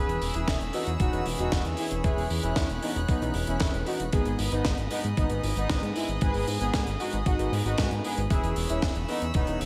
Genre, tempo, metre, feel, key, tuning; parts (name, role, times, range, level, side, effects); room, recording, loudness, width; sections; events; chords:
italo disco; 115 BPM; 4/4; straight; A4 = 436 Hz
analog synth brass; melody; 0.0-9.6 s; G#3 to B4; -34 LUFS; equal; chorus, delay
rich chamber string section; sustained chords; 0.0-9.7 s; G#4 to F#6; -39 LUFS; equal
overdriven tine electric piano; stabs; 0.0-9.7 s; G#2 to B4; -38 LUFS; equal
fat analog bass; bass; 0.0-9.7 s; E1 to G#2; -32 LUFS; equal
tight funk drum kit; drums; 0.1-9.7 s; hi-hat, snare drum; -36 LUFS; equal; gated reverb
electronic kick drum; drums; 0.5-9.5 s; -31 LUFS; equal
light reverb, studio reverb; -28 LUFS; mono
0.0-9.7 A section
0.0 E6; 4.1 G#m; 8.3 E6